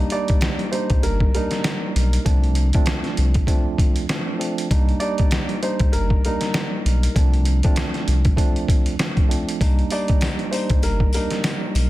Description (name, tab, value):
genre	hip hop, boom-bap hip-hop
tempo	98 BPM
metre	4/4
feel	swing 57% on 16ths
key	C dorian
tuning	A4 = 437 Hz
part	tine electric piano	accompaniment	0.0-11.9 s	F3 to Eb4	-26 LUFS	right 2 dB	medium stereo tremolo, cassette tape, high-pass filter, low-pass filter
part	warm sub bass	bass	0.0-11.9 s	G1 to C2	-19 LUFS	equal	none
part	dark upright piano	melody	0.1-11.9 s	Bb4 to D5	-28 LUFS	left 1 dB	high-pass filter, low-pass filter, tape echo
part	trip hop sampler-style drum kit	drums	0.1-11.9 s	hi-hat, kick drum, snare drum	-20 LUFS	equal	none
part	sleigh bells	percussion	9.6-11.9 s	none	-36 LUFS	left 5 dB	none
room	digital ambience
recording	dense, heavily limited modern master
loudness	-18 LUFS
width	side -16 dB against mid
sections	0.0-11.9 A section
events	none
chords	0.0 Cm7 (rootless); 2.3 Dm7/C; 4.7 Cm7; 7.2 Dm7/C; 9.6 Cm7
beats	0.42 1.03 1.65 | 2.26 2.87 3.48 4.09 | 4.71 5.32 5.93 6.54 | 7.16 7.77 8.38 8.99 | 9.61 10.22 10.83 11.44